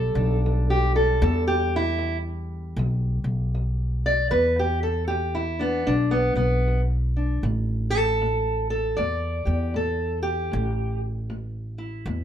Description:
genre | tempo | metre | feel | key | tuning
acoustic country blues, solo or duo | 77 BPM | 4/4 | swing 62% on 8ths | E minor | A4 = 440 Hz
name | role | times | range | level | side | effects
fingerpicked steel-string acoustic guitar | melody | 0.0-12.2 s | E2 to D5 | -24 LUFS | equal | none
upright bass | bass | 0.0-12.2 s | A1 to E2 | -24 LUFS | equal | none
room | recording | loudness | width
light reverb | minimal, uncompressed stereo recording | -22 LUFS | side -10 dB against mid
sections
0.0-12.2 A section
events
steel-string acoustic guitar solo 0.0-12.2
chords
0.0 Em7; 7.4 A5

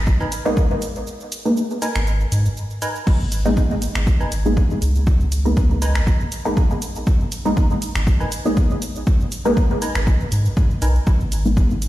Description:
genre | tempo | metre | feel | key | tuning
dub techno | 120 BPM | 4/4 | swing 54% on 16ths | G# minor | A4 = 440 Hz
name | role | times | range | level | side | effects
round analog bass | bass | 0.0-11.9 s | G#1 to G#2 | -20 LUFS | equal | sidechain pumping
electronic kick drum | drums | 0.1-11.7 s | none | -17 LUFS | equal | overdrive
punchy analog drum machine | drums | 0.1-11.9 s | cabasa, crash cymbal, finger snaps, hi-hat | -30 LUFS | right 1 dB | overdrive
wavetable chord stab | riff | 0.2-10.9 s | D#4 to G#5 | -30 LUFS | right 1 dB | sidechain pumping, dub echo
filtered dub chord stab | stabs | 0.5-11.6 s | G#3 to D#4 | -23 LUFS | equal | chorus, phaser, sidechain pumping, dub echo
room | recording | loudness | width
digital ambience | played on a big sound system in a bare room, stone room reverb | -17 LUFS | side -15 dB against mid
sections
0.0-11.9 A section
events
kick drops out 1.1-3.1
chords
0.0 G#madd9

